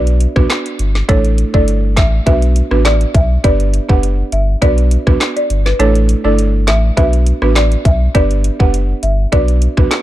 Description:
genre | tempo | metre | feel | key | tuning
dancehall | 102 BPM | 4/4 | straight | B minor | A4 = 440 Hz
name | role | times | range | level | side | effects
folk marimba with medium mallets | melody | 0.0-9.7 s | B4 to F#5 | -20 LUFS | equal | ping-pong delay
buzzing marimba with medium mallets | accompaniment | 0.0-9.9 s | A3 to B4 | -19 LUFS | right 4 dB | none
warm sub bass | bass | 0.0-9.9 s | F#1 to B1 | -13 LUFS | equal | none
island pop drum kit | drums | 0.1-10.0 s | handclaps, hi-hat, kick drum, rim click, snare drum | -14 LUFS | equal | none
room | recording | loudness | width
small room ambience | dark, warm production | -11 LUFS | side -14 dB against mid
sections
0.0-10.0 A section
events
kick muted 5.8-7.0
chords
0.0 Bm; 1.1 Asus4; 2.3 Bm; 3.4 G; 4.6 Bm; 5.8 Asus4; 7.0 Bm; 8.1 G; 9.3 Bm

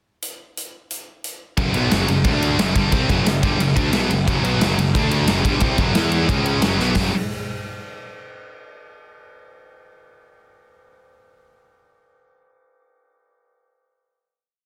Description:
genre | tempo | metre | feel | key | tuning
heavy metal | 178 BPM | 4/4 | straight | F# minor | A4 = 440 Hz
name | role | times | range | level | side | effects
big rock drum kit | drums | 0.2-7.0 s | hi-hat, kick drum, ride cymbal, snare drum | -24 LUFS | equal | none
heavy high-gain guitar | riff | 1.6-7.1 s | F#2 to E4 | -25 LUFS | equal | distortion
sludgy distorted guitar | riff | 1.6-7.1 s | F#2 to E4 | -25 LUFS | equal | overdrive
fuzz picked electric bass | bass | 1.6-7.1 s | F#1 to E2 | -26 LUFS | equal | overdrive
room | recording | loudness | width
little or no reverb | dense, heavily limited modern master | -19 LUFS | mono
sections
0.2-1.6 pickup bar; 1.6-7.0 riff; 7.0-8.3 final chord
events
drum fill 6.8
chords
0.2 N.C.; 1.6 F#5; 2.3 D5; 2.6 F#m; 5.0 D5; 5.3 F#5; 6.0 E5; 6.3 C#5; 6.6 F#5

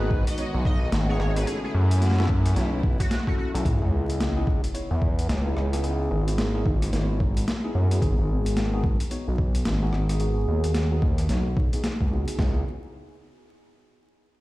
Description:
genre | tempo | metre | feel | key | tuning
glitch hop | 110 BPM | 4/4 | swing 61% on 16ths | C# minor | A4 = 441 Hz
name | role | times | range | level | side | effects
sync lead | melody | 0.0-3.5 s | F#4 to D#5 | -36 LUFS | equal | ensemble chorus, tape echo
rich studio string section | sustained chords | 0.0-3.6 s | C#3 to F#4 | -35 LUFS | equal | sidechain pumping
tine electric piano | stabs | 0.0-12.6 s | B3 to C#5 | -32 LUFS | left 1 dB | lush chorus, sidechain pumping, low-pass filter, tape echo
gritty driven synth bass | bass | 0.0-12.6 s | G#1 to F#2 | -24 LUFS | equal | none
boom bap sampler-style drum kit | drums | 0.1-12.5 s | kick drum, snare drum | -25 LUFS | equal | overdrive
boom bap sampler-style drum kit | drums | 0.3-12.4 s | hi-hat, rim click, snare drum | -31 LUFS | equal | overdrive
sub drop | sound effects | 3.7-5.8 s | none | -31 LUFS | equal | none
room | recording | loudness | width
little or no reverb | played on a big sound system in a bare room, stone room reverb, vinyl crackle | -22 LUFS | side -18 dB against mid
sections
0.0-3.7 A section; 3.7-12.4 B section; 12.4-14.4 C section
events
drop 0.0-3.7; impact 3.7-5.8; filter sweep on analog synth bass 3.7-12.4; filter sweep on tine electric piano 3.7-12.4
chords
0.0 G#m7; 1.5 B9sus4; 3.7 C#m9; 8.0 G#m7; 12.4 C#m9

